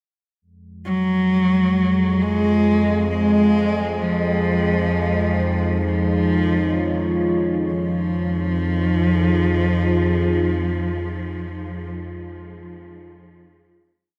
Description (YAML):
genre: dark ambient drone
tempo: free time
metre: none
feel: none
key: unclear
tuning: A4 = 440 Hz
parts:
  - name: analog drone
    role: drone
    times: 0.8-12.0 s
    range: F2 to Ab3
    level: -25 LUFS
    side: equal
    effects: chorus
  - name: warm cello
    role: melody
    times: 0.9-11.9 s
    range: F3 to Ab3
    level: -23 LUFS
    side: equal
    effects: diffuse ambient delay
  - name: deep dark ambient pad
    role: sustained chords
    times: 5.5-12.2 s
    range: Eb4 to Db5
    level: -28 LUFS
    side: equal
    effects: chorus, built-in reverb
room: wet huge ambient reverb, RT60 8.2 s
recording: none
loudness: -20 LUFS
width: mono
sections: 0.4-7.7 A section; 7.7-11.4 final chord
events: none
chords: 0.4 Fm; 4.1 Db; 7.7 Fm